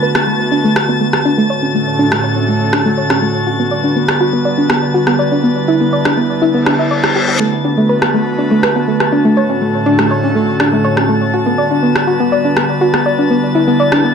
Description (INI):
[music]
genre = progressive house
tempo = 122 BPM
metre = 4/4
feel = straight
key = B minor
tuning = A4 = 435 Hz
[part]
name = airy breathy pad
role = sustained chords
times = 0.0-14.1 s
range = A2 to B4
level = -17 LUFS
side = equal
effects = chorus
[part]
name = soft round pluck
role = arpeggios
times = 0.0-14.1 s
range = A3 to E5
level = -14 LUFS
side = equal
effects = analog chorus, tape echo
[part]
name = drifting glass-harmonics texture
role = texture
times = 0.0-14.1 s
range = A5 to A6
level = -21 LUFS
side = left 2 dB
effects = chorus, built-in reverb
[part]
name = electronic rim click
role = drums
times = 0.1-14.0 s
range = none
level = -17 LUFS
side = equal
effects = none
[part]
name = reverse cymbal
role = sound effects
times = 6.6-7.4 s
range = none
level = -18 LUFS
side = left 4 dB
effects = none
[sound]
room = moderate digital room reverb, RT60 1.2 s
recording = none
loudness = -11 LUFS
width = side -6 dB against mid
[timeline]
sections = 0.0-14.1 A section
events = filter sweep on synth pluck 0.0-14.1; reverse cymbal 6.6-7.4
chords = 0.0 Bm7; 1.5 Dmaj7/A; 3.5 Gmaj7; 5.4 Em7; 7.4 Bm7; 9.4 Dmaj7/A; 11.3 Gmaj7; 13.3 Em7